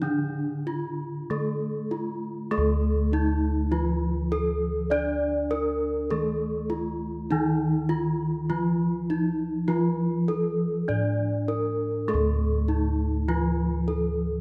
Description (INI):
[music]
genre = Javanese gamelan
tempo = 100 BPM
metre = 4/4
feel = straight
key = D pelog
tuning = A4 = 440 Hz
[part]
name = gamelan-type bronze metallophone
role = melody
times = 0.0-14.4 s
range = D4 to D5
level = -31 LUFS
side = equal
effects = none
[part]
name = gamelan-type bronze metallophone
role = accompaniment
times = 0.0-14.4 s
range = D3 to D4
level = -31 LUFS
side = equal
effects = none
[part]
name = gamelan-type bossed gongs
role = bass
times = 0.0-14.4 s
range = D2 to D5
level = -31 LUFS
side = equal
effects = none
[sound]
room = wet recital hall reverb, RT60 1.7 s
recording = none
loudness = -26 LUFS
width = mono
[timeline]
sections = 0.0-2.5 A section; 2.5-14.4 B section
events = none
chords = none